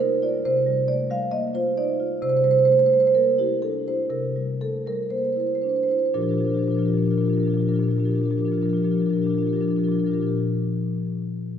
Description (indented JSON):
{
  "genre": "classical, contemporary piece for solo marimba",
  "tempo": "57-69 BPM",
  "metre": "4/4",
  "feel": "rubato",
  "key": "Bb major",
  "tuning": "A4 = 440 Hz",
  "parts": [
    { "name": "marimba with medium mallets", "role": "solo", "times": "0.0-10.3 s", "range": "Bb2 to F5", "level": "-20 LUFS", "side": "right 1 dB", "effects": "none" }
  ],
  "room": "wet church reverb, RT60 3.6 s",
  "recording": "heard from further back in the room, nothing above 7.6 kHz",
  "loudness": "-20 LUFS",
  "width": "side -8 dB against mid",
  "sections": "0.0-6.1 A section; 6.1-10.3 B section",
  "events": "slowing down 0.0-6.1",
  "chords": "0.0 Cm7; 2.2 C9; 6.1 Bb6"
}